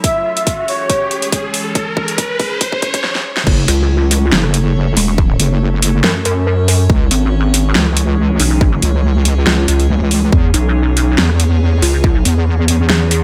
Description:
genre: heavy wobble dubstep.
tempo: 140 BPM.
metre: 4/4.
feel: swing 53% on 16ths, half-time.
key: F# minor.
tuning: A4 = 440 Hz.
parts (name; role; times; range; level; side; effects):
soft supersaw; melody; 0.0-1.2 s; C#5 to E5; -20 LUFS; equal; low-pass filter, delay.
evolving wavetable pad; sustained chords; 0.1-13.2 s; E3 to C#5; -26 LUFS; equal; phaser, built-in reverb, sidechain pumping.
dubstep drum kit; drums; 0.0-13.2 s; crash cymbal, hi-hat, rim click, snare drum; -19 LUFS; equal; small room reverb.
electronic kick drum; drums; 0.0-12.1 s; none; -17 LUFS; equal; small room reverb.
riser; sound effects; 0.0-3.0 s; none; -24 LUFS; equal; none.
wobble bass; bass; 3.5-12.9 s; F#1 to E2; -15 LUFS; equal; chorus, overdrive.
pulsing pluck wobble bass; bass; 3.7-13.2 s; E1 to F#2; -15 LUFS; equal; chorus, overdrive.
room: light reverb, digital ambience.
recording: high-pass filter.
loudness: -14 LUFS.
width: mono.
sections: 0.0-3.5 A section; 3.5-13.2 B section.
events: build-up 0.0-3.5; riser 0.0-3.0; filter sweep 0.0-3.5; drum fill 0.0-3.0, 3.0-3.5; drop 3.5-13.2.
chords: 0.0 C#m; 3.5 F#m; 6.9 C#m; 10.3 E6.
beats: | 0.04 0.47 0.90 1.32 | 1.75 2.18 2.61 3.04 | 3.47 3.90 4.33 4.75 | 5.18 5.61 6.04 6.47 | 6.90 7.33 7.75 8.18 | 8.61 9.04 9.47 9.90 | 10.32 10.75 11.18 11.61 | 12.04 12.47 12.90.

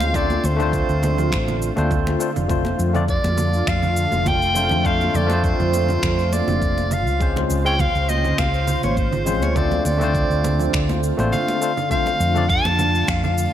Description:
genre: sunset chillout.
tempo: 102 BPM.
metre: 4/4.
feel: swing 53% on 16ths.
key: F major.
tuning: A4 = 440 Hz.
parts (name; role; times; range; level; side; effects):
bright soprano saxophone; melody; 0.0-13.5 s; C5 to A5; -23 LUFS; equal; ping-pong delay.
barky tine electric piano; accompaniment; 0.0-12.5 s; Ab3 to D5; -24 LUFS; moving between left 7 dB and right 6 dB; medium stereo tremolo, auto-pan, ping-pong delay.
lush unison pad; sustained chords; 0.0-13.5 s; Db3 to C5; -27 LUFS; equal; chorus.
hollow-body short-scale fingered electric bass; bass; 0.0-13.5 s; F1 to F2; -22 LUFS; equal; tube saturation.
electronic shaker, congas and finger snaps; drums; 0.0-13.5 s; none; -28 LUFS; right 4 dB; gated reverb.
congas; percussion; 0.0-13.2 s; none; -30 LUFS; equal; none.
electronic kick drum; drums; 0.1-13.2 s; none; -24 LUFS; equal; none.
room: light reverb, digital ambience.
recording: bright 1980s-style digital production.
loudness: -17 LUFS.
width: side -10 dB against mid.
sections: 0.0-13.5 A section.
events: none.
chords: 0.1 F6; 6.9 Dbmaj7; 9.6 Dm7; 11.9 F6.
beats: | 0.14 0.73 1.32 1.91 | 2.50 3.09 3.67 4.26 | 4.85 5.44 6.03 6.62 | 7.20 7.79 8.38 8.97 | 9.56 10.14 10.73 11.32 | 11.91 12.50 13.09.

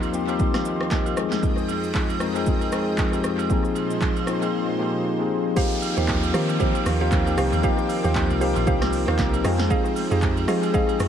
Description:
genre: amapiano.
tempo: 116 BPM.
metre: 4/4.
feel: swing 58% on 16ths.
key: unclear.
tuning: A4 = 445 Hz.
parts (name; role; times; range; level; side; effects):
mellow tine electric piano; accompaniment; 0.0-11.1 s; F3 to Ab5; -24 LUFS; left 4 dB; auto-pan, tape echo.
lush unison pad; sustained chords; 0.0-11.1 s; Eb2 to G5; -31 LUFS; right 2 dB; chorus.
deep house drum kit; drums; 0.0-11.1 s; crash cymbal, handclaps, hi-hat, kick drum, rim click, shaker, snare drum; -25 LUFS; right 1 dB; vintage 12-bit sampler grit, tape echo.
agogo bells and woodblock; percussion; 0.0-11.0 s; none; -35 LUFS; right 10 dB; tape echo.
mallet-like synth pluck; stabs; 5.6-10.9 s; G4 to F5; -29 LUFS; right 5 dB; chorus, tape echo.
downlifter; sound effects; 5.6-9.7 s; none; -35 LUFS; right 1 dB; none.
deep log drum bass; bass; 6.0-11.1 s; Bb1 to F3; -24 LUFS; right 2 dB; none.
room: light reverb.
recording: echo-heavy mix.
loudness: -20 LUFS.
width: side -9 dB against mid.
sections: 0.0-5.6 A section; 5.6-11.1 B section.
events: drop 5.6-11.1; tine electric piano fill 8.9-9.7.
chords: 0.0 Eb69; 1.2 Fm7; 3.5 Bb9sus4; 5.6 Eb69; 9.4 Fm7.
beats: 0.39 0.91 | 1.43 1.95 2.46 2.98 | 3.50 4.01 4.53 5.05 | 5.57 6.08 6.60 7.12 | 7.64 8.15 8.67 9.19 | 9.71 10.22 10.74.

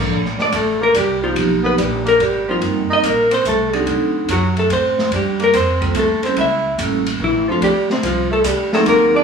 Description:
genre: jazz, small-group swing and bop.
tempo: 144 BPM.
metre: 3/4.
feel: swing 67% on 8ths.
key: unclear.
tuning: A4 = 439 Hz.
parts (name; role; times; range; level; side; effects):
vibraphone with medium hard mallets; accompaniment; 0.0-9.2 s; F3 to A#4; -20 LUFS; right 3 dB; none.
upright bass; bass; 0.1-9.2 s; G1 to A2; -24 LUFS; right 1 dB; none.
open jazz drum kit; drums; 0.1-9.0 s; hi-hat, kick drum, ride cymbal, snare drum; -24 LUFS; left 1 dB; none.
vintage hollow-body jazz guitar; melody; 0.4-9.2 s; C4 to E5; -17 LUFS; left 2 dB; none.
warm tenor saxophone; second line; 0.4-9.2 s; C3 to E4; -22 LUFS; right 3 dB; none.
room: moderate large studio reverb, RT60 0.8 s.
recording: band playing live in one room, studio ambience.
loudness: -14 LUFS.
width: side -6 dB against mid.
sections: 0.1-9.2 A section.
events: none.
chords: 0.1 Bb5; 1.4 G7alt; 2.6 Cm7; 3.9 D7b9; 5.1 Gm11; 6.4 A7b9; 7.6 Csus2.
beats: | 0.11 0.53 0.94 | 1.36 1.78 2.20 | 2.62 3.03 3.45 | 3.87 4.28 4.70 | 5.12 5.53 5.95 | 6.37 6.78 7.20 | 7.62 8.03 8.45 | 8.86.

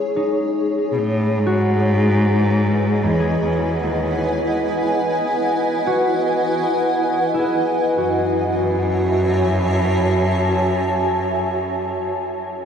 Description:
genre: ambient.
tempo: free time.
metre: none.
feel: none.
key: F# dorian.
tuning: A4 = 440 Hz.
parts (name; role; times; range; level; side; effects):
granular cloud pad; sustained chords; 0.0-12.1 s; E4 to A5; -19 LUFS; equal; built-in reverb.
concert harp; arpeggios; 0.0-12.1 s; D#4 to B4; -26 LUFS; left 2 dB; tape echo.
warm cello; melody; 0.9-12.0 s; D#2 to B2; -20 LUFS; equal; tape echo.
room: wet huge ambient reverb, RT60 8.1 s.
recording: dark, warm production.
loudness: -17 LUFS.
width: side -7 dB against mid.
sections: 0.0-8.0 A section; 8.0-11.3 B section.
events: filter sweep on ambient pad 0.0-8.0.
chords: 0.0 C#m; 1.4 Emaj7; 8.0 F#m7.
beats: free time.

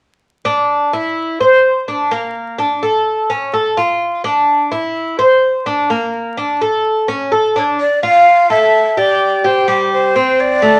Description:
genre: latin.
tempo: 127 BPM.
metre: 4/4.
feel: straight.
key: D minor.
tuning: A4 = 437 Hz.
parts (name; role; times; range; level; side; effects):
Cuban tres; arpeggios; 0.5-10.8 s; G3 to C5; -16 LUFS; equal; none.
breathy jazz flute; melody; 7.6-10.8 s; C5 to F5; -14 LUFS; equal; none.
room: wet studio reverb, RT60 0.7 s.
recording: vinyl crackle.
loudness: -14 LUFS.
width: mono.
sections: 0.2-7.8 A section; 7.8-10.8 B section.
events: none.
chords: 0.2 Dsus2; 1.2 C; 2.1 Bbmaj7; 3.1 A; 4.0 Dm; 5.0 C; 5.9 Bbmaj7; 6.8 A; 7.8 Fmaj7; 8.7 Gsus2; 9.7 C5.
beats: | 0.22 0.69 1.17 1.64 | 2.11 2.59 3.06 3.53 | 4.01 4.48 4.96 5.43 | 5.90 6.37 6.85 7.32 | 7.79 8.27 8.74 9.21 | 9.68 10.15 10.63.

